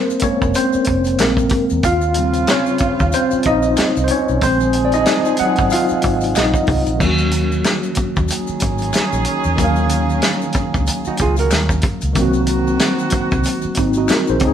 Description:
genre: R&B, neo-soul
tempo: 93 BPM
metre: 4/4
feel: swing 58% on 16ths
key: Eb dorian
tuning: A4 = 440 Hz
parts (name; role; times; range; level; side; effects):
- tine electric piano; accompaniment; 0.0-14.5 s; Db3 to Gb5; -17 LUFS; equal; overdrive, fast stereo tremolo
- maracas and finger snaps; percussion; 0.1-14.4 s; none; -31 LUFS; left 4 dB; none
- vintage muted fingered electric bass; bass; 0.2-14.5 s; F1 to Fb2; -21 LUFS; equal; none
- warm soul drum kit; drums; 0.2-14.5 s; crash cymbal, hi-hat, kick drum, snare drum; -19 LUFS; equal; none
- warm horn section; stabs; 1.8-14.5 s; Db3 to Ab4; -24 LUFS; right 2 dB; none
- hollow-body jazz guitar; second line; 11.1-12.1 s; Eb4 to Bb4; -22 LUFS; right 6 dB; none
room: moderate studio reverb, RT60 0.8 s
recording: band playing live in one room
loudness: -14 LUFS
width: side -9 dB against mid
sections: 0.0-7.0 A section; 7.0-14.5 B section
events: tine electric piano solo 0.0-7.0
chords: 0.0 Gbmaj7 (rootless); 1.2 Bb7; 1.8 Eb13; 4.4 Bb9sus4; 7.0 Ebm7; 12.2 Cm7b5

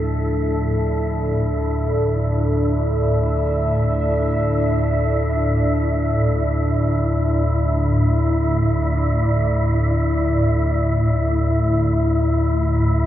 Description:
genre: ambient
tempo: free time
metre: none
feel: none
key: unclear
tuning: A4 = 438 Hz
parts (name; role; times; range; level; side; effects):
- deep dark ambient pad; sustained chords; 0.0-13.1 s; F3 to E5; -24 LUFS; equal; chorus, built-in reverb
- deep rumbling drone; drone; 0.0-13.1 s; D2 to A2; -19 LUFS; equal; built-in reverb, phaser
- wind-like tuned noise texture; texture; 0.0-13.1 s; E4 to E5; -24 LUFS; left 2 dB; built-in reverb
room: wet huge ambient reverb, RT60 8.4 s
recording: none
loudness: -17 LUFS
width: side -12 dB against mid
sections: 0.0-13.1 A section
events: none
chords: 0.0 Dm

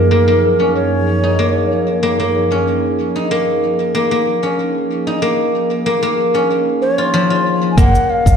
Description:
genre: organic downtempo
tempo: 94 BPM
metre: 4/4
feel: straight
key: Bb minor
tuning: A4 = 443 Hz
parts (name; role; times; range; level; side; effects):
- bass bansuri; melody; 0.0-2.3, 6.8-8.4 s; Bb4 to Ab5; -19 LUFS; right 1 dB; vintage 12-bit sampler grit, ping-pong delay
- airy breathy pad; sustained chords; 0.0-7.8 s; Gb2 to Ab4; -19 LUFS; equal; chorus, sidechain pumping
- guzheng; arpeggios; 0.0-8.4 s; F3 to F4; -16 LUFS; left 1 dB; low-pass filter, digital delay
- woody fretless electric bass; bass; 7.8-8.4 s; Gb1; -15 LUFS; equal; sidechain pumping
- electronic kick drum; drums; 7.8-8.4 s; none; -12 LUFS; equal; none
- shaker; drums; 7.8-8.4 s; none; -33 LUFS; left 5 dB; none
room: moderate echo chamber reverb, RT60 2.2 s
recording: played on a big sound system in a bare room, large studio reverb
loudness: -13 LUFS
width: side -7 dB against mid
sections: 0.0-7.8 A section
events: none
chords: 0.0 Gbadd9; 2.7 Bbm7; 7.8 Gb

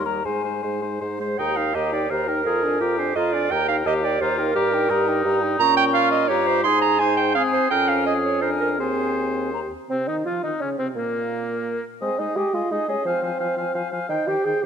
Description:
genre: quick classical-period movement for wind quintet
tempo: 170 BPM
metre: 3/4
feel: rubato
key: Eb major, Ab major from 5.6 s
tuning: A4 = 440 Hz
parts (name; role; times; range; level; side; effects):
- hollow concert flute; melody; 0.0-14.7 s; C4 to Db6; -30 LUFS; left 12 dB; none
- warm oboe; second line; 0.0-14.7 s; Bb3 to G5; -28 LUFS; left 4 dB; none
- warm French horn; accompaniment; 0.0-14.7 s; Bb2 to G4; -29 LUFS; left 1 dB; none
- warm clarinet; accompaniment; 0.0-14.7 s; Bb3 to C6; -24 LUFS; right 6 dB; none
- dark bassoon; bass; 0.0-14.7 s; Eb2 to Ab4; -26 LUFS; right 1 dB; none
room: moderate concert hall reverb, RT60 2.1 s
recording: none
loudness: -20 LUFS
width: side -7 dB against mid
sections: 0.0-1.4 A section; 1.4-9.9 B section; 9.9-14.7 A section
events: none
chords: 0.3 Ab; 1.4 Eb; 2.5 Bb7/F; 3.5 Eb; 4.6 Eb/G; 5.6 Eb7/Bb; 6.6 Ab; 7.7 Db/F; 8.4 Bb7/F; 8.8 Ab/Eb; 9.5 Eb; 9.9 Dbmaj9/C; 11.0 N.C.; 12.0 Ab; 13.1 Fm; 14.1 Cm/Eb

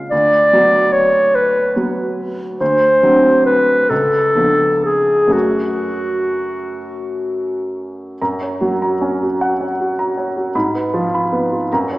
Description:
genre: classical, romantic duo for clarinet and grand piano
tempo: 40-52 BPM (dotted quarters)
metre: 6/8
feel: rubato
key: F# minor, F# major from 8.2 s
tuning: A4 = 443 Hz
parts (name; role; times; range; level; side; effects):
- dark grand piano; accompaniment; 0.0-12.0 s; C#2 to Cb6; -19 LUFS; right 1 dB; none
- mellow clarinet; melody; 0.1-7.8 s; F#4 to D5; -14 LUFS; equal; none
room: wet concert hall reverb, RT60 2.2 s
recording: recorded in a church or concert hall, small speaker sound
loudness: -13 LUFS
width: side -18 dB against mid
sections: 0.0-8.2 A section; 8.2-12.0 B section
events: none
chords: 0.1 Bm/D; 2.6 D7; 3.9 C#7b9; 5.3 F#m; 8.2 F#; 10.5 Fdim/Ab

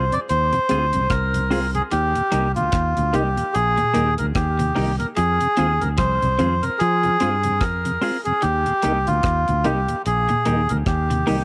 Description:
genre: roots reggae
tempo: 74 BPM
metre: 4/4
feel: swing 59% on 16ths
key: Eb major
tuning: A4 = 440 Hz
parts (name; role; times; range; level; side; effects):
- melodica; melody; 0.0-11.4 s; F4 to D5; -23 LUFS; equal; tape echo
- semi-hollow electric guitar; accompaniment; 0.0-11.4 s; Bb3 to Ab4; -31 LUFS; equal; tape echo
- clean electric guitar; arpeggios; 0.0-11.4 s; Bb2 to F3; -31 LUFS; equal; subtle chorus
- fingered electric bass; bass; 0.0-11.4 s; Bb1 to F3; -25 LUFS; equal; none
- mellow tonewheel organ; accompaniment; 0.1-11.4 s; Eb2 to F4; -30 LUFS; equal; chorus vibrato, stopped rotary speaker
- deep reggae drum kit; drums; 0.1-11.4 s; hi-hat, kick drum, rim click; -30 LUFS; equal; none
room: light reverb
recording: none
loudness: -20 LUFS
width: mono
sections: 0.0-11.4 A section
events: none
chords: 0.0 Fm; 1.9 Eb; 5.2 Fm; 8.4 Eb

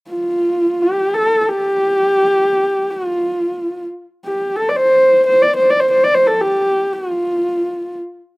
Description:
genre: mongolian traditional, Mongolian folk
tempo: free time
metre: none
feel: none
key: F gong mode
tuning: A4 = 440 Hz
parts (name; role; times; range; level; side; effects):
- dark horsehead fiddle; solo; 0.1-8.0 s; F4 to D5; -14 LUFS; equal; none
room: light reverb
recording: recorded outdoors, with no room sound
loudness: -13 LUFS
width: side -25 dB against mid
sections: 0.0-8.4 A section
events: none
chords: none

